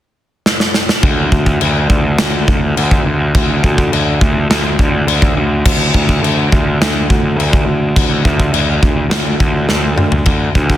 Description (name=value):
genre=heavy metal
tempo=104 BPM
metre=4/4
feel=straight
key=unclear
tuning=A4 = 440 Hz
part: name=big rock drum kit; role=drums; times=0.5-10.8 s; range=china cymbal, crash cymbal, kick drum, snare drum, toms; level=-13 LUFS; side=equal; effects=soft clipping on kick
part: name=fuzz picked electric bass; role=bass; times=1.0-10.8 s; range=D2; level=-14 LUFS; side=equal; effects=overdrive
room=little or no reverb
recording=dense, heavily limited modern master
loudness=-11 LUFS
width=side -13 dB against mid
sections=0.0-1.0 A section; 1.0-10.3 B section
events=drum fill 0.5-1.0, 9.7-10.3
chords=none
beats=0.46 | 1.03 1.61 2.19 2.77 | 3.35 3.92 4.50 5.08 | 5.66 6.23 6.81 7.39 | 7.96 8.54 9.12 9.70 | 10.27